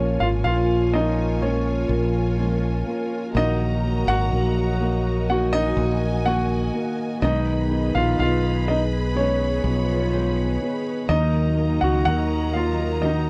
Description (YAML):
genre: pop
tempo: 62 BPM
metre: 4/4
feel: straight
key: Eb minor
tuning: A4 = 441 Hz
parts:
  - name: warm grand piano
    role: melody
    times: 0.0-13.3 s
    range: Db4 to Gb5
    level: -27 LUFS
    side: equal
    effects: none
  - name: mellow French horn section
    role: second line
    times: 0.0-13.3 s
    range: Eb3 to Gb4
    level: -33 LUFS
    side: equal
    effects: none
  - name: felt-muted upright piano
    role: accompaniment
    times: 0.0-13.3 s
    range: Eb3 to Cb4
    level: -31 LUFS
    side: equal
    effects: none
  - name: warm studio string section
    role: sustained chords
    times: 0.0-13.3 s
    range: Gb3 to Cb6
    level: -34 LUFS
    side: equal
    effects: none
  - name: fingerpicked steel-string acoustic guitar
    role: arpeggios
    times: 0.0-13.3 s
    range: Bb2 to Ab4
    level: -34 LUFS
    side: equal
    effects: none
  - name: mellow fretless electric bass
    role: bass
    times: 0.0-13.3 s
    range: Ab1 to Eb2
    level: -26 LUFS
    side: equal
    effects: none
room: small room ambience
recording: dry, close 1970s-style studio recording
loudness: -22 LUFS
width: mono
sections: 0.0-13.3 A section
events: none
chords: 0.0 Bbm7; 3.4 Ebm; 7.2 Abm; 11.1 Ebm